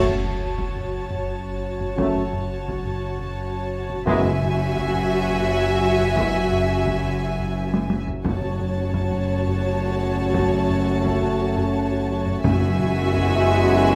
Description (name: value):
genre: cinematic, suspense film score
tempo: 86 BPM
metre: 3/4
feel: straight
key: F# minor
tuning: A4 = 440 Hz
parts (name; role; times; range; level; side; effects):
- warm symphonic violin section; melody; 0.0-13.9 s; G#5 to A5; -33 LUFS; equal; none
- warm studio violin section; second line; 0.0-13.9 s; C#5 to E5; -31 LUFS; equal; none
- dark symphonic viola section; accompaniment; 0.0-13.9 s; F#4; -30 LUFS; equal; none
- clear trombone section; sustained chords; 0.0-13.9 s; F#2 to A3; -30 LUFS; equal; none
- dark French horn section; sustained chords; 0.0-13.9 s; B3 to F#4; -30 LUFS; equal; none
- dark symphonic double bass section; bass; 0.0-13.9 s; F#1; -31 LUFS; equal; none
- warm studio cello section; bass; 0.0-13.9 s; F#2; -30 LUFS; equal; none
- deep rumbling drone; drone; 0.7-13.9 s; F#1; -38 LUFS; equal; built-in reverb
- impact; sound effects; 0.0-2.0 s; none; -38 LUFS; equal; none
- solo taiko drums; drums; 0.1-13.9 s; none; -32 LUFS; equal; none
- timpani; percussion; 4.1-5.1, 8.3-9.3, 12.4-13.4 s; F#2; -30 LUFS; equal; none
- warm symphonic violin section; texture; 12.4-13.9 s; E6 to B6; -38 LUFS; equal; none
room: moderate scoring stage reverb, RT60 1.7 s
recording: close, detailed microphones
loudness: -22 LUFS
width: mono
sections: 0.0-13.9 A section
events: band accent 0.0-0.6; impact 0.0-2.0; drum fill 7.7-8.3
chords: 0.0 F#m; 4.1 Eadd9/F#; 8.3 F#m; 12.4 Eadd9/F#